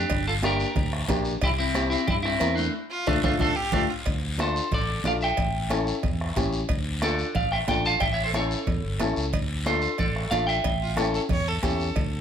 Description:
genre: latin, cumbia.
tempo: 182 BPM.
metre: 4/4.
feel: straight.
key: D minor, D harmonic minor from 4.1 s.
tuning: A4 = 443 Hz.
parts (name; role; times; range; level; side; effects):
clean electric guitar; melody; 0.0-11.4 s; A3 to A5; -27 LUFS; right 1 dB; spring reverb, slapback echo.
fingered electric bass; bass; 0.0-12.2 s; G1 to G2; -29 LUFS; equal; none.
bombo; percussion; 0.1-12.1 s; none; -30 LUFS; equal; none.
congas; percussion; 0.1-12.1 s; none; -34 LUFS; right 4 dB; none.
cowbell and timbales; percussion; 0.1-12.1 s; none; -37 LUFS; right 5 dB; none.
guiro; percussion; 0.1-12.2 s; none; -36 LUFS; left 2 dB; none.
dark upright piano; accompaniment; 0.4-11.9 s; A3 to Bb4; -29 LUFS; left 3 dB; none.
clear fiddle; second line; 2.9-4.1, 10.8-12.2 s; F4 to C#5; -31 LUFS; right 2 dB; none.
room: light reverb.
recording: none.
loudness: -23 LUFS.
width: side -8 dB against mid.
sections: 0.0-4.1 A section; 4.1-12.2 B section.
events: drum fill 2.7-4.1; band accent 2.7-4.1.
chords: 0.1 Gm; 1.4 C; 2.7 Dm; 5.4 A7; 6.7 Dm; 8.0 A; 9.3 Dm; 10.6 A7.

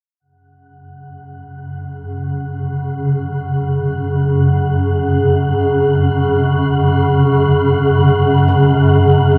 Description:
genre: dark ambient drone.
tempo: free time.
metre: none.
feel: none.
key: unclear.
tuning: A4 = 440 Hz.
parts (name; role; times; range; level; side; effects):
swarming drone; drone; 1.6-9.4 s; F#2 to C#3; -15 LUFS; equal; built-in reverb.
wind-like tuned noise texture; texture; 1.0-9.4 s; F#5; -27 LUFS; equal; built-in reverb.
gamelan-type bossed gongs; arpeggios; 8.5-9.4 s; C#3; -21 LUFS; equal; none.
room: wet huge ambient reverb, RT60 8.0 s.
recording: none.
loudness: -15 LUFS.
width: mono.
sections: 0.2-9.4 A section.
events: fade-in on synth texture 0.2-9.4.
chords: 0.2 F#5.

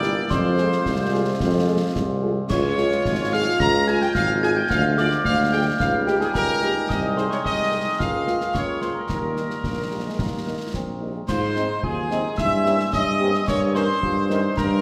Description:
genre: military-style march for wind band.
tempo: 109 BPM.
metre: 2/4.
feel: straight.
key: Ab major.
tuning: A4 = 445 Hz.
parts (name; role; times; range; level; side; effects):
clear trumpet section; melody; 0.0-14.8 s; G4 to Bb5; -30 LUFS; equal; none.
glockenspiel with soft plastic mallets; second line; 0.0-14.8 s; G5 to Bb6; -30 LUFS; equal; none.
warm woodwind section; second line; 0.0-14.8 s; G4 to Bb5; -31 LUFS; equal; none.
mellow French horn section; accompaniment; 0.0-14.4 s; G3 to Bb4; -33 LUFS; equal; none.
clear trombone section; sustained chords; 0.0-14.4 s; Eb3 to F4; -33 LUFS; equal; none.
warm tuba; bass; 0.0-14.8 s; G1 to Ab2; -27 LUFS; equal; none.
concert snare drum, concert bass drum and clash cymbals; drums; 0.0-14.8 s; none; -32 LUFS; equal; none.
warm euphonium; second line; 9.6-14.8 s; G3 to G4; -34 LUFS; equal; none.
mellow hollow piccolo; second line; 11.3-14.8 s; Ab5 to E6; -31 LUFS; equal; none.
room: wet scoring stage reverb, RT60 1.9 s.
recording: none.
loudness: -22 LUFS.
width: mono.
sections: 0.0-11.3 A section; 11.3-14.8 B section.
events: none.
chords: 0.3 Fm; 2.5 Db; 4.7 Bb7/D; 5.8 Eb7/Db; 6.9 Ab/C; 8.0 Bbm7/Db; 9.1 Eb; 11.3 Ab; 12.4 Gdim7; 13.5 Eb7/G.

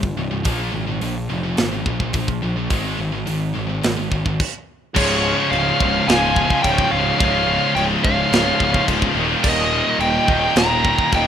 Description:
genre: heavy metal.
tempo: 107 BPM.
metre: 4/4.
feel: straight.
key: unclear.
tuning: A4 = 441 Hz.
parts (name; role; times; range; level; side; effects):
scooped high-gain guitar; riff; 0.0-11.3 s; C2 to Bb3; -26 LUFS; left 10 dB; distortion.
scooped high-gain guitar; riff; 0.0-11.3 s; C2 to Bb3; -27 LUFS; right 11 dB; distortion.
fuzz picked electric bass; bass; 0.0-11.3 s; C1 to Bb1; -25 LUFS; equal; overdrive.
tight metal drum kit; drums; 0.0-11.3 s; china cymbal, crash cymbal, hi-hat, kick drum, snare drum; -22 LUFS; right 1 dB; none.
dark smooth lead guitar; second line; 4.9-11.3 s; Ab4 to G5; -27 LUFS; right 2 dB; overdrive, ping-pong delay.
scooped high-gain guitar; riff; 4.9-11.3 s; Db2 to F4; -20 LUFS; left 2 dB; distortion.
bluesy overdriven lead guitar; melody; 5.0-11.3 s; Db5 to Bb5; -20 LUFS; equal; distortion.
room: studio reverb.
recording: rough home demo mix.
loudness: -16 LUFS.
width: side -9 dB against mid.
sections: 0.0-5.0 A section; 5.0-11.3 B section.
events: stop 4.4-5.0.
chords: 0.5 Bb5; 2.7 Ab5; 5.0 Db; 9.2 Eb.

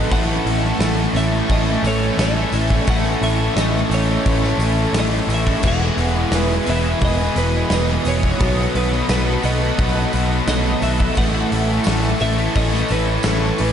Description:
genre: rock, shoegaze and dream pop.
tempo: 87 BPM.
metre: 4/4.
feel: straight.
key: A lydian.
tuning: A4 = 440 Hz.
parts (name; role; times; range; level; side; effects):
twelve-string electric guitar; melody; 0.0-13.7 s; B4 to F#5; -26 LUFS; equal; lush chorus, analog delay.
chorused pulse-width pad; sustained chords; 0.0-13.7 s; A4 to D#6; -28 LUFS; right 1 dB; none.
picked twelve-string acoustic guitar; arpeggios; 0.0-13.7 s; E3 to G#4; -30 LUFS; right 2 dB; none.
distorted electric guitar; riff; 0.0-13.7 s; E2 to B3; -28 LUFS; right 1 dB; overdrive.
fuzz guitar; riff; 0.0-13.7 s; E2 to B3; -23 LUFS; left 6 dB; distortion, analog chorus.
overdriven electric guitar; riff; 0.0-13.7 s; A2 to A4; -26 LUFS; right 8 dB; reverse reverb.
picked electric bass; bass; 0.0-13.7 s; E1 to B1; -21 LUFS; equal; none.
gated 80s drum kit; drums; 0.1-13.7 s; crash cymbal, hi-hat, kick drum, snare drum; -24 LUFS; equal; none.
tambourine; percussion; 0.1-13.7 s; none; -37 LUFS; right 9 dB; none.
room: wet lush hall reverb, RT60 3.0 s.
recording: dreamy mix soaked in reverb, nothing above 11.0 kHz.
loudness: -16 LUFS.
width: side -8 dB against mid.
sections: 0.0-13.7 A section.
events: none.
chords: 0.1 Amaj7; 5.6 Emaj7; 8.4 B7; 11.2 Amaj7.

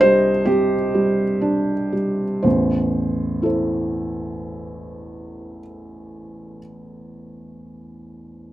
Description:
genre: neoclassical minimalist piano.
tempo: 57-69 BPM.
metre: 4/4.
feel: rubato.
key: A minor.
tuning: A4 = 440 Hz.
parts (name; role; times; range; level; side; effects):
felt-muted upright piano; solo; 0.0-8.5 s; A1 to Eb5; -19 LUFS; right 1 dB; none.
room: moderate studio reverb, RT60 0.6 s.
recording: rough home demo mix.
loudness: -18 LUFS.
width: side -14 dB against mid.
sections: 0.0-2.4 A section; 2.4-6.3 B section.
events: slowing down 0.0-2.4.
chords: 0.0 Cmadd9; 2.4 Am.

